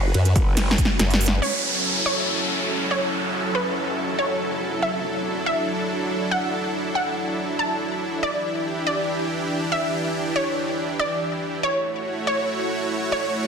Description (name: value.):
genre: heavy wobble dubstep.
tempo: 141 BPM.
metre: 4/4.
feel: half-time.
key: F# phrygian.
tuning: A4 = 440 Hz.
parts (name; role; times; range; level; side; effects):
supersaw pad; sustained chords; 0.0-13.5 s; E3 to C#5; -25 LUFS; right 1 dB; sidechain pumping.
formant-sweep wobble bass; bass; 0.0-1.4 s; F#1 to F#2; -19 LUFS; equal; chorus, overdrive.
big-room dance drum kit; drums; 0.1-1.5 s; crash cymbal, hi-hat, ride cymbal, snare drum; -23 LUFS; equal; overdrive, low-pass filter on hats, low-pass filter on cymbals, low-pass filter on snare, low-pass filter on room.
growl bass; bass; 0.4-0.8 s; F#1; -24 LUFS; equal; chorus, overdrive.
electronic kick drum; drums; 0.4-0.9 s; none; -22 LUFS; equal; overdrive.
wide unison pluck; melody; 1.4-13.5 s; B4 to A5; -26 LUFS; equal; cassette tape, ping-pong delay.
downlifter; sound effects; 1.4-4.8 s; none; -26 LUFS; equal; none.
room: moderate digital room reverb, RT60 1.0 s.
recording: dense, heavily limited modern master.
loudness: -21 LUFS.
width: side -6 dB against mid.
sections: 0.0-1.4 A section; 1.4-13.5 B section.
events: drop 0.0-1.4; drum fill 0.6-1.4.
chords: 0.0 F#5; 1.4 F#m7; 4.8 Dadd9/F#; 8.2 Em7; 11.6 A6.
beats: 0.14 0.57 0.99 | 1.42 1.85 2.27 2.70 | 3.12 3.55 3.97 4.40 | 4.83 5.25 5.68 6.10 | 6.53 6.95 7.38 7.80 | 8.23 8.65 9.08 9.51 | 9.93 10.36 10.78 11.21 | 11.63 12.06 12.48 12.91 | 13.34.